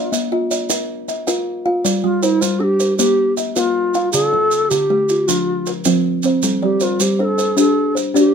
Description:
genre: southern african traditional, mbira-style interlocking cycle.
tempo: 104 BPM (dotted quarters).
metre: 12/8.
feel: straight.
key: G equiheptatonic.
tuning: A4 = 439 Hz.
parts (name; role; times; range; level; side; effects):
mellow low Native American-style wooden flute; melody; 0.0-8.3 s; E4-42c to Bb4-30c; -17 LUFS; equal; none.
kalimba; arpeggios; 0.0-8.3 s; D3 to F5+29c; -20 LUFS; left 4 dB; none.
kalimba; arpeggios; 0.0-8.3 s; D3 to F5+29c; -21 LUFS; right 5 dB; none.
maracas; percussion; 0.1-8.3 s; none; -23 LUFS; right 7 dB; none.
room: light reverb.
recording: minimal, uncompressed stereo recording.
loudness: -15 LUFS.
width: side -7 dB against mid.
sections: 0.0-8.3 A section.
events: none.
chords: 0.0 Bb; 1.8 Gm; 3.0 Bb5; 4.1 Dm; 5.3 F5; 6.4 Gm.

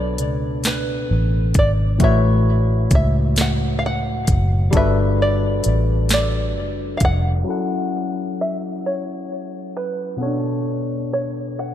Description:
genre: slow six-eight R&B.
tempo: 44 BPM (dotted quarters).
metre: 6/8.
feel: straight.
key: unclear.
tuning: A4 = 440 Hz.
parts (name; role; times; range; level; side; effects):
open-back banjo; melody; 0.0-11.7 s; A4 to F#5; -26 LUFS; right 1 dB; ping-pong delay.
barky tine electric piano; accompaniment; 0.0-11.7 s; A2 to F#5; -23 LUFS; left 2 dB; phaser.
vintage muted fingered electric bass; bass; 0.0-7.4 s; F1 to C#2; -19 LUFS; equal; none.
smooth R&B drum kit; drums; 0.2-7.2 s; hi-hat, kick drum, snare drum; -20 LUFS; equal; none.
room: moderate church reverb, RT60 3.2 s.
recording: dreamy mix soaked in reverb, low-pass filter.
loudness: -17 LUFS.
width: side -11 dB against mid.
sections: 0.0-7.5 A section; 7.5-11.7 B section.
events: none.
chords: 0.0 Bm9; 2.0 A6; 4.7 Gmaj9; 7.5 F#m7; 10.2 Bm9.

